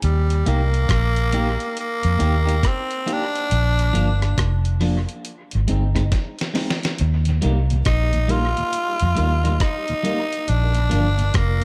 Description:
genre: roots reggae.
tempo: 69 BPM.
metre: 4/4.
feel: swing 63% on 16ths.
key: Eb major.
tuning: A4 = 440 Hz.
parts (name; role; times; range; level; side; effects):
raspy tenor saxophone; melody; 0.0-11.6 s; G3 to F4; -26 LUFS; equal; tape echo.
vintage muted fingered electric bass; bass; 0.0-11.6 s; F1 to F2; -21 LUFS; equal; none.
dusty soul sampler-style drum kit; drums; 0.0-11.6 s; hi-hat, kick drum, rim click, snare drum; -27 LUFS; equal; dub echo.
electric guitar at the edge of break-up; accompaniment; 0.5-11.1 s; F3 to G4; -30 LUFS; equal; spring reverb, tape echo.
mellow tonewheel organ; accompaniment; 7.3-11.6 s; Eb2 to Eb4; -33 LUFS; equal; overdrive, chorus vibrato, slow rotary speaker, dub echo.
room: little or no reverb.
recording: none.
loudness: -20 LUFS.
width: mono.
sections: 0.0-11.6 A section.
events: drum fill 6.1-7.0.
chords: 0.0 Eb; 3.5 Bb; 5.2 Ab; 7.0 Eb; 10.5 Bb.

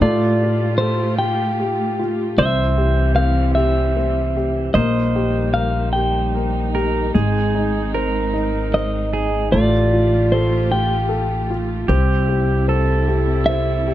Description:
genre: acoustic folk-pop ballad.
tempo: 50 BPM (dotted quarters).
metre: 6/8.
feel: straight.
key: unclear.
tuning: A4 = 440 Hz.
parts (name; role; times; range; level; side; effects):
clean electric guitar; melody; 0.0-13.9 s; C5 to G5; -22 LUFS; equal; harmonic tremolo, plate reverb.
pedal steel guitar; second line; 0.0-13.9 s; F4 to C5; -25 LUFS; right 3 dB; none.
warm grand piano; accompaniment; 0.0-13.9 s; Ab3 to C5; -23 LUFS; left 1 dB; none.
warm studio string section; sustained chords; 0.0-13.9 s; C3 to G4; -27 LUFS; right 1 dB; none.
upright bass; bass; 0.0-13.9 s; Ab1 to A2; -20 LUFS; equal; none.
room: light reverb.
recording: dark, warm production.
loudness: -16 LUFS.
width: side -13 dB against mid.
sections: 0.0-13.9 A section.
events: none.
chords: 0.0 Fadd9/A; 2.4 C; 4.8 Eb/Bb; 7.1 Ab; 9.5 Fadd9/A; 11.9 C.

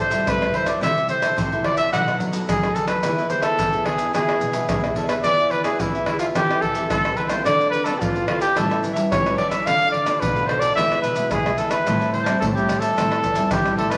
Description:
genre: samba and choro.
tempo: 109 BPM.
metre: 4/4.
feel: straight.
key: A minor.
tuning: A4 = 439 Hz.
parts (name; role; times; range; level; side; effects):
warm trumpet; melody; 0.0-14.0 s; E4 to F#5; -23 LUFS; equal; none.
nylon-string guitar; accompaniment; 0.0-14.0 s; F#2 to A4; -31 LUFS; equal; none.
nylon-string guitar; bass; 0.0-14.0 s; E2 to G3; -32 LUFS; equal; none.
cavaquinho; accompaniment; 0.1-14.0 s; D4 to A5; -32 LUFS; equal; none.
maracas, pandeiro, surdo and tamborim; percussion; 0.1-14.0 s; none; -28 LUFS; equal; none.
room: wet large studio reverb, RT60 1.3 s.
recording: none.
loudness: -21 LUFS.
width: mono.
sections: 0.0-14.0 A section.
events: none.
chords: 0.0 C6; 0.8 Am/C; 1.9 B7; 3.0 E; 5.2 E7; 6.3 Am7/E; 7.5 Dm7; 8.6 A7; 9.7 Dm; 10.8 E; 11.9 Am7.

